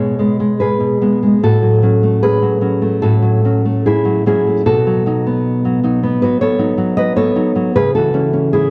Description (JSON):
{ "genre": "romantic piece for solo classical guitar", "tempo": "71-79 BPM", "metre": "4/4", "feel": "rubato", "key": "unclear", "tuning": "A4 = 440 Hz", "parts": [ { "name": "nylon-string guitar", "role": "solo", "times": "0.0-8.7 s", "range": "A2 to D#5", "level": "-14 LUFS", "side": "equal", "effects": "none" } ], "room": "wet recital hall reverb, RT60 1.3 s", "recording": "worn, warbling old tape, cassette tape, warbly pitch drift", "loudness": "-15 LUFS", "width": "mono", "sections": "0.0-8.7 A section", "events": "none", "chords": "0.0 E (rootless); 1.4 F#m/A; 4.7 B7; 7.8 C#m7" }